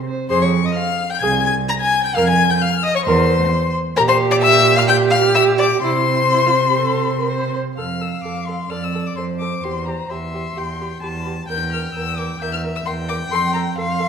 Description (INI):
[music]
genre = quick classical-period movement for string quartet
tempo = 130 BPM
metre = 4/4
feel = rubato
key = F minor, F major from 4.0 s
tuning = A4 = 440 Hz
[part]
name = warm cello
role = bass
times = 0.0-14.1 s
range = C2 to C3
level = -22 LUFS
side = right 4 dB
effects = none
[part]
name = warm viola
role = accompaniment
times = 0.1-14.1 s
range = E4 to C5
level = -22 LUFS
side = right 4 dB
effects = none
[part]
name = warm violin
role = melody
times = 0.3-14.1 s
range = Bb5 to Bb6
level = -20 LUFS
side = left 6 dB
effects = none
[part]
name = warm violin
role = second line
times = 0.3-14.1 s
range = Bb4 to Bb5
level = -22 LUFS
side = left 3 dB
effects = none
[sound]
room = wet recital hall reverb, RT60 1.4 s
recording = none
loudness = -16 LUFS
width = side -7 dB against mid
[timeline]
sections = 0.0-7.8 A section; 7.8-14.1 B section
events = none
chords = 0.3 Fm; 2.2 Bb5/F; 3.1 C7/E; 4.0 Gm/Bb; 5.8 C; 7.8 F; 9.6 C/E; 11.5 Edim; 13.3 F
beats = | 0.30 0.77 1.23 1.70 | 2.16 2.62 3.07 3.52 | 3.97 4.42 4.89 5.36 | 5.84 6.33 6.82 7.30 | 7.79 8.25 8.71 9.18 | 9.64 10.10 10.57 11.03 | 11.50 11.96 12.41 12.87 | 13.32 13.78